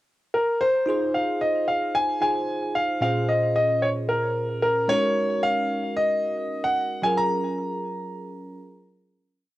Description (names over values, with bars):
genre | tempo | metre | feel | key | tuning
amapiano | 112 BPM | 4/4 | straight | unclear | A4 = 440 Hz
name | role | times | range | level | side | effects
warm grand piano | melody | 0.3-8.9 s | Bb4 to Bb5 | -23 LUFS | equal | cassette tape, analog delay
bell-like tine electric piano | accompaniment | 0.9-9.5 s | Bb2 to C5 | -27 LUFS | right 1 dB | analog chorus, cassette tape
room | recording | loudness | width
wet booth ambience, RT60 0.2 s | home recording on cassette | -21 LUFS | side -16 dB against mid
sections
0.0-0.9 pickup bar; 0.9-9.5 drop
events
drop 0.9-9.5; fade-out 7.3-9.5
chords
0.0 N.C.; 0.9 Fm7; 3.0 Bbm7; 4.9 Ab9sus4; 7.0 Gbmaj7